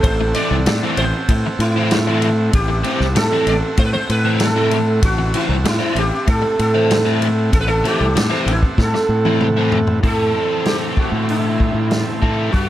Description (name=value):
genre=psychedelic rock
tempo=96 BPM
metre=4/4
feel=straight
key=A dorian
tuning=A4 = 440 Hz
part: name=sitar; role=melody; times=0.0-12.7 s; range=E4 to D5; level=-21 LUFS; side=right 1 dB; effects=analog delay
part: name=overdriven combo organ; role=sustained chords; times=0.0-12.7 s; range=C4 to A5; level=-28 LUFS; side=right 6 dB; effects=none
part: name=fuzz fingered electric bass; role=bass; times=0.0-12.7 s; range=A1 to A2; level=-19 LUFS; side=equal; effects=overdrive
part: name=vintage drum kit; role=drums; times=0.0-12.7 s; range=hi-hat, kick drum, ride cymbal, snare drum, toms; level=-21 LUFS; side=equal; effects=none
part: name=overdriven electric guitar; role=riff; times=0.2-12.7 s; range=A2 to A4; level=-22 LUFS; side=left 2 dB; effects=flanger, analog delay
room=small room ambience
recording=echo-heavy mix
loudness=-14 LUFS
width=side -13 dB against mid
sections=0.0-10.0 A section; 10.0-12.7 B section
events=drum fill 8.8-10.0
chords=0.0 Am